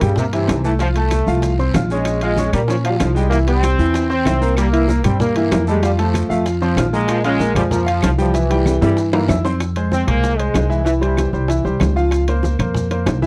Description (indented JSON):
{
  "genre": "latin, salsa",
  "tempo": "191 BPM",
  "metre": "4/4",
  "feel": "straight",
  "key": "F harmonic minor from 9.6 s",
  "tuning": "A4 = 440 Hz",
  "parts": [
    { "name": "brilliant trombone section", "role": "melody", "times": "0.0-11.3 s", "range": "C3 to C4", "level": "-24 LUFS", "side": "equal", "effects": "none" },
    { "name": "bright concert grand piano", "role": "accompaniment", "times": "0.0-13.3 s", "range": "E3 to F6", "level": "-23 LUFS", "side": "equal", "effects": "none" },
    { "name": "upright bass", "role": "bass", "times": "0.0-13.3 s", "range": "Bb1 to Bb2", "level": "-21 LUFS", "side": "equal", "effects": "none" },
    { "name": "claves", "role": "percussion", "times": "0.0-13.2 s", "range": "none", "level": "-36 LUFS", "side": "equal", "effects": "none" },
    { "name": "congas", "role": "percussion", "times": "0.0-13.3 s", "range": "none", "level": "-28 LUFS", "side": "equal", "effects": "none" },
    { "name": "guiro", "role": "percussion", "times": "0.0-9.6 s", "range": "none", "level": "-40 LUFS", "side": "equal", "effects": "none" },
    { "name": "maracas", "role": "percussion", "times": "0.0-13.3 s", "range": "none", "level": "-43 LUFS", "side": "equal", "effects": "none" },
    { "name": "timbales", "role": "percussion", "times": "0.0-13.2 s", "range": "none", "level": "-28 LUFS", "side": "equal", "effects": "none" },
    { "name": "bongos", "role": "percussion", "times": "0.2-13.2 s", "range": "none", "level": "-29 LUFS", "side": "equal", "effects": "none" },
    { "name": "bright trombone section", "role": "second line", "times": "4.6-9.4 s", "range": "Db3 to A3", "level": "-24 LUFS", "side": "equal", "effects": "none" }
  ],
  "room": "little or no reverb",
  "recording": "dry, close 1970s-style studio recording",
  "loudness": "-17 LUFS",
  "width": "mono",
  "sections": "0.0-9.6 A section; 9.6-13.3 B section",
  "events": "drum fill 8.7-9.6",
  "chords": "0.0 C7; 0.8 F/C; 2.1 Bbm; 3.3 C; 4.6 C7; 5.8 F; 7.1 Bb7(no3); 8.3 C7; 9.6 Fm; 10.9 C; 12.1 Bbmadd9/Db",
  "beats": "0.17 0.49 | 0.80 1.12 1.43 1.75 | 2.06 2.38 2.69 3.00 | 3.32 3.63 3.95 4.26 | 4.57 4.89 5.20 5.52 | 5.83 6.14 6.46 6.77 | 7.09 7.40 7.72 8.03 | 8.35 8.66 8.97 9.29 | 9.60 9.92 10.23 10.55 | 10.86 11.18 11.49 11.81 | 12.12 12.44 12.75 13.07"
}